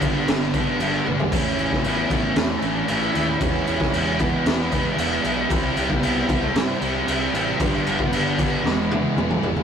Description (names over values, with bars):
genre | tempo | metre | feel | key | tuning
quiet-loud alternative rock | 115 BPM | 4/4 | straight | unclear | A4 = 439 Hz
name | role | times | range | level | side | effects
rich cello | melody | 0.0-9.4 s | G3 to E4 | -30 LUFS | equal | none
cranked stack guitar | riff | 0.0-9.6 s | G2 to E4 | -28 LUFS | equal | overdrive
sludgy distorted guitar | riff | 0.0-9.6 s | G2 to E4 | -28 LUFS | right 9 dB | overdrive
thick fuzz guitar | riff | 0.0-9.6 s | G2 to E4 | -29 LUFS | left 7 dB | distortion
picked electric bass | bass | 0.0-9.6 s | E1 to G2 | -31 LUFS | left 1 dB | none
raw garage drum kit | drums | 0.0-9.6 s | crash cymbal, kick drum, snare drum, toms | -22 LUFS | equal | none
room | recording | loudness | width
light reverb | rough rehearsal-room recording | -19 LUFS | side -7 dB against mid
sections
0.0-9.6 A section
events
drum fill 1.1, 8.6-9.6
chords
0.0 G; 1.3 A; 3.4 E; 5.5 C; 7.6 G; 8.6 E